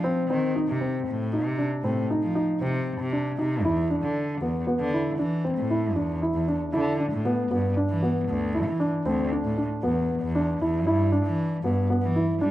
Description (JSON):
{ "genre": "contemporary instrumental, chamber music in an uneven meter", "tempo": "116 BPM", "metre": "7/4", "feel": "straight", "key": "unclear", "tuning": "A4 = 438 Hz", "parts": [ { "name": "dark baby grand piano", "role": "arpeggios", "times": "0.0-12.5 s", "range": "B3 to E4", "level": "-25 LUFS", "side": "equal", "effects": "none" }, { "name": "rich cello", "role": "bass", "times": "0.0-12.5 s", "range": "D2 to G3", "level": "-26 LUFS", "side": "equal", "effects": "none" } ], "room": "moderate recital hall reverb, RT60 1.5 s", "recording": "dark, warm production", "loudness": "-23 LUFS", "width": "side -14 dB against mid", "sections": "0.0-12.5 A section", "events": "none", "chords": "0.0 Cm; 3.6 E7(no3); 10.9 G" }